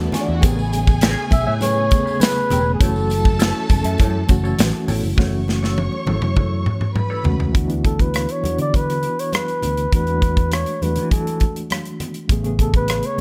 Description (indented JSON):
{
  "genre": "lush 1970s-style soul",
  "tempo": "101 BPM",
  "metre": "4/4",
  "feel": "straight",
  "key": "F# minor",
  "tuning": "A4 = 438 Hz",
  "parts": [
    { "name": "warm studio string section", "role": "second line", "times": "0.0-7.5 s", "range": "B3 to C#6", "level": "-32 LUFS", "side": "equal", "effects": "none" },
    { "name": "mellow reed electric piano", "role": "accompaniment", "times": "0.0-13.2 s", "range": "C#3 to G#4", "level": "-28 LUFS", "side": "equal", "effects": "fast tremolo" },
    { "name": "string machine, full ensemble", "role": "sustained chords", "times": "0.0-5.1 s", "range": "E3 to A4", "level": "-36 LUFS", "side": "equal", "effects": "none" },
    { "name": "electric guitar through a small old amp", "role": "riff", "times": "0.0-7.4 s", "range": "C#4 to E5", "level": "-33 LUFS", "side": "equal", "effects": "wah" },
    { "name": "fingered electric bass", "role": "bass", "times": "0.0-13.2 s", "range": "E1 to E3", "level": "-25 LUFS", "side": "equal", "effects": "none" },
    { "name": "modern studio drum kit", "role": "drums", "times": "0.1-13.2 s", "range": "hi-hat, kick drum, rim click, snare drum, toms", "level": "-21 LUFS", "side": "equal", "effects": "none" },
    { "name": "congas", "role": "percussion", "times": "0.1-13.2 s", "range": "none", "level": "-33 LUFS", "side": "equal", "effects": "none" },
    { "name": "tambourine", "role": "percussion", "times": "0.1-5.2 s", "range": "none", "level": "-40 LUFS", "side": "equal", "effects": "none" },
    { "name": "breathy flugelhorn", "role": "melody", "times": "1.3-3.4, 7.9-13.2 s", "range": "G#4 to E5", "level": "-25 LUFS", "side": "equal", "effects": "none" }
  ],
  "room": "small room ambience",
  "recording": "none",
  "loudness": "-19 LUFS",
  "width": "mono",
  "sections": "0.0-5.2 A section; 5.2-7.5 B section; 7.5-13.2 C section",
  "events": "drum fill 5.2-7.5",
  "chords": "0.4 Amaj9; 2.8 F#m7; 7.5 D69; 9.9 E9sus4; 12.3 Amaj9"
}